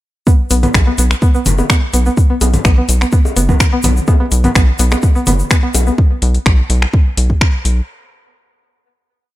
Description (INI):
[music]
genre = minimal techno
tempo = 126 BPM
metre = 4/4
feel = straight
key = unclear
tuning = A4 = 438 Hz
[part]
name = string-like resonator pluck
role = riff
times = 0.3-5.9 s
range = B3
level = -19 LUFS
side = equal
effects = chorus, cassette tape, sidechain pumping, ping-pong delay
[part]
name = electronic kick drum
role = drums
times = 0.3-7.5 s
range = none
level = -11 LUFS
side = equal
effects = overdrive, small room ambience
[part]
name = egg shaker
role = percussion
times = 0.3-6.0 s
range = none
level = -24 LUFS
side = left 2 dB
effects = none
[part]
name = rubbery square bass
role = bass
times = 0.5-7.8 s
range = F#1 to B1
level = -13 LUFS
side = equal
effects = sidechain pumping
[part]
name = booming analog drum machine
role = drums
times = 0.5-7.8 s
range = finger snaps, hi-hat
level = -19 LUFS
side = left 1 dB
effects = small room ambience
[part]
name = congas and bongos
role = percussion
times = 0.6-5.8 s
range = none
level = -22 LUFS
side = left 2 dB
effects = overdrive, small room ambience, tape echo
[sound]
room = little or no reverb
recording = none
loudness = -10 LUFS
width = side -16 dB against mid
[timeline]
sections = 0.3-7.9 drop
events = drop 0.3-7.9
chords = 0.3 B5